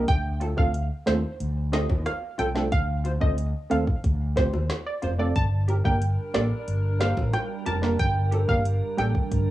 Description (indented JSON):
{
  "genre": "dancehall",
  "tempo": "91 BPM",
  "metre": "4/4",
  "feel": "straight",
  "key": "G minor",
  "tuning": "A4 = 440 Hz",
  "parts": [
    { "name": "wavetable chord stab", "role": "accompaniment", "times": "0.0-9.1 s", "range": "G3 to C5", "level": "-28 LUFS", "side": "right 1 dB", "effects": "sidechain pumping, cassette tape" },
    { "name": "fretless electric bass", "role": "bass", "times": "0.0-9.5 s", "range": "F1 to Eb2", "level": "-26 LUFS", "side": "equal", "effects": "analog chorus" },
    { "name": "glassy wavetable pluck", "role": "melody", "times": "0.1-9.1 s", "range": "C5 to A5", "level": "-30 LUFS", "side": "right 1 dB", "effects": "chorus" },
    { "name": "afro-pop drum kit", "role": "drums", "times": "0.1-9.5 s", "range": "hi-hat, kick drum, rim click, snare drum", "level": "-26 LUFS", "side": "equal", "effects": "cassette tape" },
    { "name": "bongos", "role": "percussion", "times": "0.4-8.5 s", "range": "none", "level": "-37 LUFS", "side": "left 2 dB", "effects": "none" },
    { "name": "glassy FM pad", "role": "sustained chords", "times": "5.8-9.5 s", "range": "G3 to Bb4", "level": "-33 LUFS", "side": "right 1 dB", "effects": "ensemble chorus, built-in reverb, sidechain pumping, cassette tape" }
  ],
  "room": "digital ambience",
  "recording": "home recording on cassette",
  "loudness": "-22 LUFS",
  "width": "side -15 dB against mid",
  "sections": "0.0-9.5 A section",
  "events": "none",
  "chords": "0.1 Dm7; 5.4 Gm",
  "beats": "| 0.08 0.74 1.40 2.06 | 2.72 3.38 4.04 4.70 | 5.36 6.02 6.68 7.33 | 7.99 8.65 9.31"
}